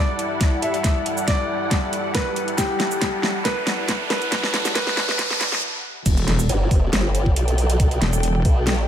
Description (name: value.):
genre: heavy wobble dubstep.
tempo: 138 BPM.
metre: 4/4.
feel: swing 53% on 16ths, half-time.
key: E minor.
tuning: A4 = 437 Hz.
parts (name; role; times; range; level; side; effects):
clear grand piano; melody; 0.0-5.5 s; G4 to E5; -26 LUFS; equal; digital delay.
lush unison pad; sustained chords; 0.0-5.6 s; G3 to F#5; -29 LUFS; left 1 dB; chorus, phaser, sidechain pumping.
riser and impact; sound effects; 1.4-7.8 s; none; -28 LUFS; right 1 dB; none.
dark studio string section; texture; 0.0-8.9 s; E4 to G5; -31 LUFS; equal; sidechain pumping.
dubstep drum kit; drums; 0.2-8.8 s; crash cymbal, hi-hat, shaker, snare drum; -24 LUFS; equal; studio reverb.
electronic kick drum; drums; 0.4-8.5 s; none; -20 LUFS; equal; studio reverb.
wobble bass; bass; 6.1-8.4 s; E1; -20 LUFS; equal; chorus, overdrive.
formant-sweep wobble bass; bass; 6.5-8.9 s; G1 to B1; -20 LUFS; equal; chorus, overdrive.
room: light reverb.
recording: high-pass filter.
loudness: -18 LUFS.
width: side -10 dB against mid.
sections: 0.0-6.1 A section; 6.1-8.9 B section.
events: build-up 0.0-6.1; drum fill 0.0-5.6; filter sweep 0.0-6.1; riser 1.4-5.6; stop 5.6-6.1; drop 6.1-8.9; impact 6.1-7.8.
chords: 0.0 Emadd9; 6.1 Em.